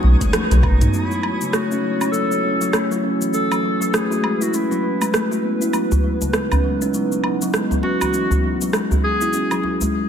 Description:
organic downtempo; 100 BPM; 4/4; swing 60% on 16ths; F# dorian; A4 = 440 Hz
warm clarinet; melody; 0.0-9.9 s; D#4 to A4; -24 LUFS; left 1 dB; ping-pong delay
warbly tape-like pad; sustained chords; 0.0-9.9 s; G#3 to C#5; -26 LUFS; right 1 dB; chorus, built-in reverb, sidechain pumping
kalimba; arpeggios; 0.0-9.9 s; C#3 to F#4; -22 LUFS; left 1 dB; low-pass filter, digital delay
warm sub bass; bass; 0.0-0.9 s; B1; -13 LUFS; equal; sidechain pumping
djembe; percussion; 0.0-0.8, 5.9-9.9 s; -22 LUFS; equal
twinkling granular texture; texture; 0.0-1.0 s; C#4 to D#6; -34 LUFS; right 1 dB; built-in reverb
afro-pop drum kit; drums; 0.2-9.9 s; cabasa, hi-hat, rim click, toms, woodblock; -24 LUFS; right 1 dB; overdrive
electronic kick drum; drums; 0.2-0.8 s; -22 LUFS; equal; overdrive
moderate lush hall reverb, RT60 1.9 s; -17 LUFS; side -8 dB against mid
0.9-10.1 A section
drum fill 0.3-0.9; band accent 0.3-0.6; filter sweep on kalimba 0.9-10.1
0.0 B7; 0.9 F#m7; 5.7 Emaj7
0.33 | 0.93 1.53 2.13 2.73 | 3.33 3.93 4.53 5.13 | 5.73 6.33 6.93 7.53 | 8.13 8.73 9.33

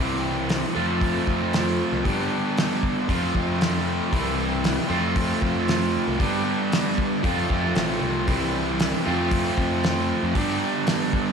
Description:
classic rock; 116 BPM; 4/4; straight; A4 = 442 Hz
distorted electric guitar; riff; 0.0-11.3 s; C3 to G4; -23 LUFS; right 1 dB; distortion
fuzz picked electric bass; bass; 0.0-10.6 s; A1 to G2; -28 LUFS; equal; overdrive
cloth-damped thuddy drum kit; drums; 0.5-11.2 s; hi-hat, kick drum, snare drum; -27 LUFS; equal
moderate lush hall reverb, RT60 1.6 s; big arena sound; -21 LUFS; side -6 dB against mid
0.0-11.3 A section
0.0 C; 0.8 F; 2.1 G; 3.1 F; 4.1 C; 4.9 F; 6.2 G; 7.2 F; 8.3 C; 9.1 F; 10.3 G
0.50 1.02 1.54 | 2.06 2.58 3.09 3.61 | 4.13 4.65 5.17 5.68 | 6.20 6.72 7.24 7.76 | 8.28 8.79 9.31 9.83 | 10.35 10.87

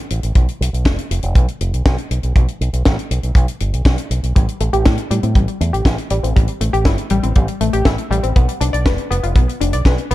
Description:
italo disco; 120 BPM; 4/4; straight; A minor; A4 = 440 Hz
fingered electric bass with an envelope filter; bass; 0.1-10.1 s; F1 to A2; -18 LUFS; equal
tight funk drum kit; drums; 0.1-10.1 s; hi-hat, snare drum; -23 LUFS; left 2 dB
kick drum; drums; 0.4-10.0 s; -14 LUFS; equal
analog pluck; arpeggios; 4.4-10.1 s; G3 to D5; -21 LUFS; left 3 dB; chorus, phaser, digital delay
small room reverb; dark, warm production; -14 LUFS; side -16 dB against mid
0.0-10.1 A section
0.4 N.C.; 4.4 A7(no3); 8.4 Bdim
| 0.36 0.86 1.36 1.86 | 2.36 2.86 3.36 3.86 | 4.36 4.86 5.36 5.86 | 6.36 6.86 7.36 7.86 | 8.36 8.86 9.36 9.86

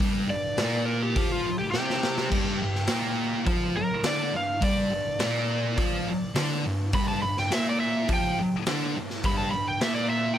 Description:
garage rock duo or trio; 104 BPM; 4/4; straight; A4 = 441 Hz
thick fuzz guitar; riff; 0.0-10.4 s; G2 to F4; -27 LUFS; equal; distortion
raw garage drum kit; drums; 0.0-10.0 s; crash cymbal, hi-hat, kick drum, snare drum; -30 LUFS; equal
overdriven slide guitar; melody; 0.3-10.4 s; F4 to B5; -29 LUFS; equal
light reverb; -24 LUFS; side -10 dB against mid
0.0-10.4 A section
electric slide guitar solo 0.0-10.4; drum fill 1.7-2.3
0.0 G5
| 0.01 0.59 1.17 1.74 | 2.32 2.90 3.47 4.05 | 4.63 5.21 5.78 6.36 | 6.94 7.51 8.09 8.67 | 9.25 9.82

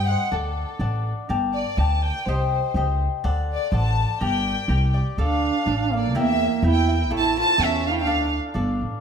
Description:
mexican folk, mariachi; 123 BPM; 2/4; straight; G harmonic minor, D harmonic minor from 5.2 s; A4 = 440 Hz
warm chamber violin section; melody; 0.0-8.3 s; A4 to A5; -25 LUFS; equal
cavaquinho; accompaniment; 0.0-9.0 s; D4 to A5; -28 LUFS; left 6 dB
upright bass; bass; 0.0-9.0 s; G1 to G2; -23 LUFS; equal
warm duduk; second line; 5.2-8.3 s; Bb3 to F4; -25 LUFS; right 8 dB; tape echo
moderate recital hall reverb, RT60 1.7 s; -20 LUFS; side -7 dB against mid
0.0-5.2 A section; 5.2-9.0 B section
0.3 D; 1.3 Gmadd9; 2.3 Cm; 3.2 D7; 4.2 Gm; 5.2 Dm; 6.1 Edim; 7.1 A; 8.1 Dm
| 0.31 0.80 | 1.28 1.77 | 2.27 2.75 | 3.24 3.72 | 4.21 4.70 | 5.18 5.67 | 6.15 6.63 | 7.11 7.59 | 8.07 8.56

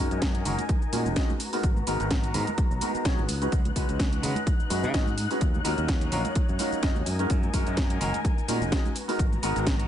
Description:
filtered disco house; 127 BPM; 4/4; swing 55% on 16ths; G# minor; A4 = 440 Hz
bright concert grand piano; accompaniment; 0.0-9.9 s; F#3 to D#5; -31 LUFS; equal; phaser, sidechain pumping, low-pass filter
dark studio string section; sustained chords; 0.0-9.9 s; B3 to F#6; -35 LUFS; left 4 dB; sidechain pumping, low-pass filter
modern bright fingered electric bass; bass; 0.0-9.9 s; F#1 to C#3; -30 LUFS; equal; sidechain pumping, low-pass filter
house drum kit; drums; 0.1-9.9 s; hi-hat, shaker, snare drum; -33 LUFS; equal; overdrive, sidechain pumping on hats, sidechain pumping on perc
tambourine and congas; percussion; 0.1-9.9 s; -38 LUFS; right 5 dB
electronic kick drum; drums; 0.2-9.8 s; -26 LUFS; equal; overdrive
little or no reverb; nothing above 10.9 kHz; -24 LUFS; side -10 dB against mid
0.0-9.9 A section
filter sweep 0.0-9.9
0.0 F#69; 1.4 G#m9; 3.3 C#9sus4; 5.4 D#m7; 7.1 F#69; 9.0 G#m9
0.22 0.69 1.16 | 1.64 2.11 2.58 3.05 | 3.52 4.00 4.47 4.94 | 5.42 5.89 6.36 6.83 | 7.30 7.78 8.25 8.72 | 9.19 9.67

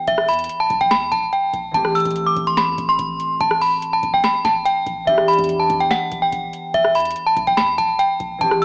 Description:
hip hop, trap; 144 BPM; 4/4; half-time; E minor; A4 = 443 Hz
metallic FM bell; melody; 0.0-8.6 s; E5 to E6; -16 LUFS; equal; chorus, low-pass filter
concert harp; accompaniment; 0.0-8.6 s; E3 to G4; -26 LUFS; equal; low-pass filter, cassette tape
clean 808-style bass; bass; 0.1-8.6 s; E1 to E2; -37 LUFS; equal
booming analog drum machine; drums; 0.1-8.6 s; hi-hat, kick drum, rim click, snare drum; -28 LUFS; equal; cassette tape
light reverb; home recording on cassette, small speaker sound; -16 LUFS; side -34 dB against mid
0.0-8.6 A section
0.0 Em7; 1.7 Am7; 5.1 Em7
| 0.07 0.49 0.91 1.32 | 1.74 2.16 2.58 2.99 | 3.41 3.83 4.24 4.66 | 5.08 5.49 5.91 6.33 | 6.74 7.16 7.58 7.99 | 8.41

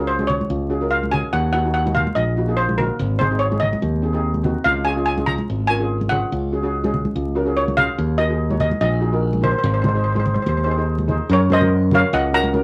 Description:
calypso; 144 BPM; 4/4; swing 53% on 16ths; A4 = 442 Hz
steel pan; melody; 0.0-12.6 s; Bb4 to Bb5; -23 LUFS; equal
steel pan; accompaniment; 0.0-12.6 s; Bb3 to Db5; -27 LUFS; equal
modern bright fingered electric bass; bass; 0.0-12.6 s; Ab1 to Gb2; -23 LUFS; equal
congas; percussion; 0.2-12.6 s; -28 LUFS; equal
wet small room reverb, RT60 0.5 s; vinyl crackle; -20 LUFS; mono
0.0-11.3 A section; 11.3-12.6 B section
0.0 Gbsus2/Db; 1.3 Ebm; 3.0 Ab; 4.7 Db; 6.3 Gbsus2/Db; 8.0 Ebm; 9.6 Ab; 11.3 Gb6
0.08 0.50 0.91 | 1.33 1.75 2.16 2.58 | 2.99 3.41 3.82 4.24 | 4.66 5.07 5.49 5.90 | 6.32 6.73 7.15 7.57 | 7.98 8.40 8.81 9.23 | 9.64 10.06 10.47 10.88 | 11.30 11.71 12.12 12.54

